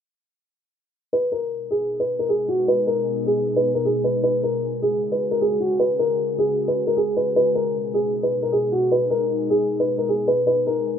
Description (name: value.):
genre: hip hop.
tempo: 154 BPM.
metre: 4/4.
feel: half-time.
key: G# minor.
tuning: A4 = 440 Hz.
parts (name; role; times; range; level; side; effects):
dark grand piano; melody; 1.1-11.0 s; F#4 to B4; -20 LUFS; equal; low-pass filter.
glassy FM pad; sustained chords; 1.7-11.0 s; B2 to G#4; -28 LUFS; equal; ensemble chorus, built-in reverb.
room: moderate small room reverb, RT60 0.5 s.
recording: rough home demo mix, low-pass filter.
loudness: -19 LUFS.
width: side -8 dB against mid.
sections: 1.1-11.0 A section.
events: filter sweep 1.1-11.0.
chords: 1.1 G#m; 4.2 F#sus2; 7.4 G#m; 10.5 F#sus2.